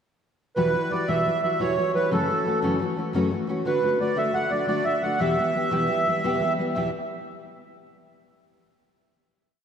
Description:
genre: celtic folk, Celtic slip jig.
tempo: 116 BPM (dotted quarters).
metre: 9/8.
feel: straight.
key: E dorian.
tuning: A4 = 439 Hz.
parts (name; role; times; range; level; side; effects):
accordion; melody; 0.6-6.9 s; A4 to F#5; -24 LUFS; right 2 dB; light tremolo tuning, analog delay.
fingerpicked steel-string acoustic guitar; accompaniment; 0.6-6.9 s; E2 to G4; -25 LUFS; left 2 dB; analog chorus.
room: wet lush hall reverb, RT60 2.9 s.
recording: dreamy mix soaked in reverb.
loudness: -22 LUFS.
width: side -8 dB against mid.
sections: 0.6-6.7 A section; 6.7-8.3 final chord.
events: none.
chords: 0.6 Emadd9; 2.1 F#m7; 3.7 D; 5.2 Em.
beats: | 0.57 1.08 1.59 | 2.11 2.62 3.14 | 3.65 4.17 4.68 | 5.20 5.71 6.23 | 6.74.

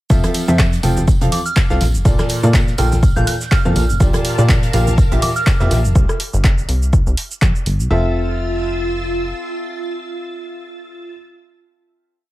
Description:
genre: piano house.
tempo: 123 BPM.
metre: 4/4.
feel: swing 56% on 16ths.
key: F major.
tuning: A4 = 437 Hz.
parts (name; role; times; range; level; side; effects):
bright baby grand piano; riff; 0.1-11.1 s; Bb2 to G5; -21 LUFS; equal; sidechain pumping.
plucky analog bass; bass; 0.1-9.3 s; F1 to Bb2; -17 LUFS; equal; sidechain pumping.
electronic kick drum; drums; 0.1-7.5 s; none; -15 LUFS; equal; none.
loose indie drum kit; drums; 0.1-5.8 s; hi-hat, snare drum, tambourine; -34 LUFS; right 1 dB; none.
punchy analog drum machine; drums; 0.1-7.9 s; cabasa, handclaps, hi-hat, rim click; -24 LUFS; right 1 dB; none.
tambourine and congas; percussion; 0.1-5.9 s; none; -27 LUFS; equal; none.
soft synth bell; melody; 1.3-5.6 s; D6 to G6; -25 LUFS; right 3 dB; chorus, phaser, dub echo.
string machine, violins; sustained chords; 4.0-11.1 s; F4 to A6; -25 LUFS; right 1 dB; ensemble chorus, sidechain pumping.
room: small room ambience.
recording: none.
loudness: -13 LUFS.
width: side -16 dB against mid.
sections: 0.1-7.9 groove; 7.9-11.8 final chord.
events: none.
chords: 0.1 Fmaj7; 1.8 Bbmaj7; 4.0 Gm7/Bb; 6.0 C5; 7.9 Fmaj7.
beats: | 0.10 0.59 1.08 1.56 | 2.05 2.54 3.03 3.52 | 4.00 4.49 4.98 5.47 | 5.96 6.44 6.93 7.42 | 7.91 8.39 8.88 9.37 | 9.86 10.35 10.83.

